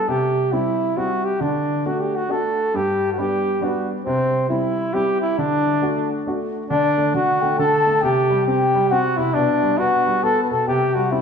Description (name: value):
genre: celtic folk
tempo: 136 BPM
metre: 3/4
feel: swing 62% on 8ths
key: D mixolydian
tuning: A4 = 439 Hz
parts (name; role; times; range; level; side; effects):
- mellow flugelhorn; melody; 0.0-11.2 s; C4 to B4; -19 LUFS; right 1 dB; none
- clear upright piano; accompaniment; 0.1-11.2 s; G2 to F#4; -24 LUFS; equal; none
- mellow baroque flute; second line; 6.7-11.2 s; D5 to A5; -23 LUFS; left 6 dB; none
room: moderate concert hall reverb, RT60 2.0 s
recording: recorded in a church or concert hall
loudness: -17 LUFS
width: side -6 dB against mid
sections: 0.0-6.7 A section; 6.7-11.2 A section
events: none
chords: 0.1 C; 1.4 D; 2.7 G; 4.1 C; 5.4 D; 8.0 C5; 9.3 G/B; 10.7 C